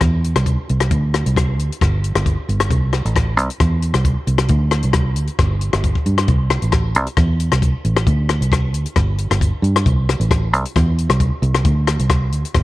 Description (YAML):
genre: highlife guitar band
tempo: 134 BPM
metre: 4/4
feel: straight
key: C major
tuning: A4 = 440 Hz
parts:
  - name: fingered electric bass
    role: bass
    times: 0.0-12.6 s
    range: G1 to G2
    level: -17 LUFS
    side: right 1 dB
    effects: none
  - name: compact cocktail drum kit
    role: drums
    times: 0.0-12.6 s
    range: hi-hat, kick drum, rim click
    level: -19 LUFS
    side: left 2 dB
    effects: none
room: light reverb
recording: 1960s-style stereo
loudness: -15 LUFS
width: side -16 dB against mid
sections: 0.0-12.6 A section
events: none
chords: none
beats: 0.01 0.46 | 0.91 1.36 1.81 2.25 | 2.70 3.15 3.60 4.05 | 4.50 4.94 5.39 5.84 | 6.28 6.73 7.18 7.62 | 8.07 8.52 8.96 9.41 | 9.86 10.30 10.75 11.20 | 11.64 12.09 12.54